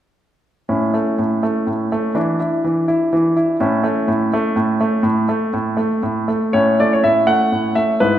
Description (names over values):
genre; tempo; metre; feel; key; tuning
classical-period piano sonatina; 82 BPM (dotted quarters); 6/8; straight; A major; A4 = 442 Hz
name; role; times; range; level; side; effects
bright concert grand piano; solo; 0.7-8.2 s; G#2 to F#5; -15 LUFS; equal; none
room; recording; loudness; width
wet recital hall reverb, RT60 1.9 s; minimal, uncompressed stereo recording; -15 LUFS; side -11 dB against mid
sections
0.7-6.5 A section; 6.5-8.2 B section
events
none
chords
0.7 A; 2.2 Dsus2/E; 3.6 A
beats
| 0.70 1.43 | 2.16 2.89 | 3.60 4.32 | 5.04 5.77 | 6.53 7.27 | 8.00